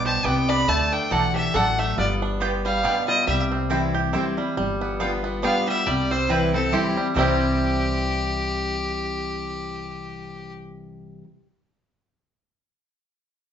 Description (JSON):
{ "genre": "bluegrass", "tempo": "139 BPM", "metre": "3/4", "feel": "swing 56% on 8ths", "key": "C major", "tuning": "A4 = 440 Hz", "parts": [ { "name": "clear fiddle", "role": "melody", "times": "0.0-3.4, 5.4-10.5 s", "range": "G4 to B5", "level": "-25 LUFS", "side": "left 1 dB", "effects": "none" }, { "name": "lap resonator guitar", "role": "second line", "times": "0.0-11.2 s", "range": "C4 to D5", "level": "-31 LUFS", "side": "left 3 dB", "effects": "none" }, { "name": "picked steel-string acoustic guitar", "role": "accompaniment", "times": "0.0-11.3 s", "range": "G2 to F4", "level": "-28 LUFS", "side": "left 1 dB", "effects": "none" }, { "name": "bluegrass banjo", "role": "arpeggios", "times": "0.0-11.2 s", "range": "G3 to G4", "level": "-27 LUFS", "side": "right 3 dB", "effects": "none" }, { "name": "upright bass", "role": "bass", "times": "0.0-11.2 s", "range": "G1 to D2", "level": "-28 LUFS", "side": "equal", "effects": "none" }, { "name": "mandolin", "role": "stabs", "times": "0.2-11.3 s", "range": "A3 to A5", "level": "-28 LUFS", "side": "right 2 dB", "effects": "none" } ], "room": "wet large studio reverb, RT60 0.8 s", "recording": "band playing live in one room, nothing above 7.7 kHz", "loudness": "-20 LUFS", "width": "side -8 dB against mid", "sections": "0.0-4.6 A section; 4.6-7.2 B section; 7.2-9.8 C section", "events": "none", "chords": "0.0 G; 0.7 D; 2.0 G7; 3.3 C; 4.6 G7; 5.9 C", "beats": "0.25 | 0.68 1.11 1.54 | 1.98 2.41 2.84 | 3.27 3.71 4.14 | 4.57 5.00 5.43 | 5.87 6.30 6.73 | 7.16 7.59 8.03 | 8.46 8.89 9.32" }